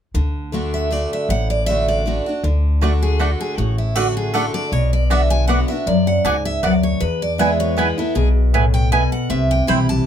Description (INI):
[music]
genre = bluegrass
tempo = 157 BPM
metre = 3/4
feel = swing 54% on 8ths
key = D lydian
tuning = A4 = 440 Hz
[part]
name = picked steel-string acoustic guitar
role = accompaniment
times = 0.1-10.1 s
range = E2 to F#4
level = -21 LUFS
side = left 2 dB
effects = none
[part]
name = upright bass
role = bass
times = 0.1-10.0 s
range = A1 to F#2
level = -19 LUFS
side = equal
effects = none
[part]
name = picked steel-string acoustic guitar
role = melody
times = 0.7-10.1 s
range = E4 to B5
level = -22 LUFS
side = right 2 dB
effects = plate reverb
[part]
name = mandolin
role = stabs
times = 2.8-9.8 s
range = A3 to G#5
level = -21 LUFS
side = right 5 dB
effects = none
[sound]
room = light reverb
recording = close, detailed microphones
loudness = -16 LUFS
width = side -9 dB against mid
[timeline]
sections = 0.2-2.4 A section; 2.4-10.1 B section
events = none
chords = 0.2 D; 4.7 Bm; 7.0 E; 9.3 C